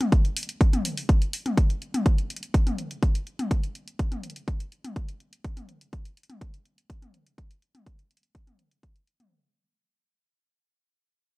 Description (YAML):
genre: techno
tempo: 124 BPM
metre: 4/4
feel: straight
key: none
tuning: none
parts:
  - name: house drum kit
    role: drums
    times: 0.0-9.3 s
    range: hi-hat, toms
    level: -31 LUFS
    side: left 1 dB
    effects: none
  - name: electronic kick drum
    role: drums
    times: 0.1-8.9 s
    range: none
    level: -22 LUFS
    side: equal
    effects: none
room: little or no reverb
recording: dry, gritty hardware recording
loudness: -24 LUFS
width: side -23 dB against mid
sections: 0.0-9.3 A section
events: fade-out 0.0-9.3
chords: none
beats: 0.12 0.61 1.09 | 1.57 2.06 2.54 3.02 | 3.51 3.99 4.48 4.96 | 5.44 5.93 6.41 6.90 | 7.38 7.86 8.35 8.83